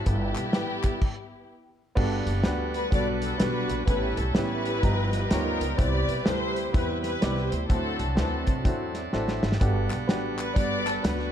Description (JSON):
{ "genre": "uptempo gospel", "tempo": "126 BPM", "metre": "4/4", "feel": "swing 62% on 8ths", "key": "G major", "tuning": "A4 = 438 Hz", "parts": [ { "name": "warm studio string section", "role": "melody", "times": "0.0-11.3 s", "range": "B3 to D5", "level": "-30 LUFS", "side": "left 2 dB", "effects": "none" }, { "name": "bright tonewheel organ", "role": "sustained chords", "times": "0.0-11.3 s", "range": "C3 to F#5", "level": "-34 LUFS", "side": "right 4 dB", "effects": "overdrive, stopped rotary speaker" }, { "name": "upright bass", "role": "bass", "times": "0.0-11.3 s", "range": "F#1 to E2", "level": "-30 LUFS", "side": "equal", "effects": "none" }, { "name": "warm upright piano", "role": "accompaniment", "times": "0.1-11.3 s", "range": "G2 to A#5", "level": "-31 LUFS", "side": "equal", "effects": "none" }, { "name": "warm soul drum kit", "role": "drums", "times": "0.1-11.3 s", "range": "crash cymbal, hi-hat, kick drum, snare drum", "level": "-27 LUFS", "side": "equal", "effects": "none" }, { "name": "group handclap", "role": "percussion", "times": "0.4-0.9, 9.9-10.9 s", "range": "none", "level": "-41 LUFS", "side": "left 3 dB", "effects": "none" } ], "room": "light reverb", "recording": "dark, warm production", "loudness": "-24 LUFS", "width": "side -9 dB against mid", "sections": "0.0-2.0 A section; 2.0-11.3 A section", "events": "stop 1.0-2.0; tonewheel organ fill 8.7-9.6; drum fill 9.1-9.6", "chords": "0.1 G69; 2.0 Gmaj9; 3.9 A9; 4.8 G7alt; 5.8 Cmaj7; 7.7 D9; 9.6 Gmaj9" }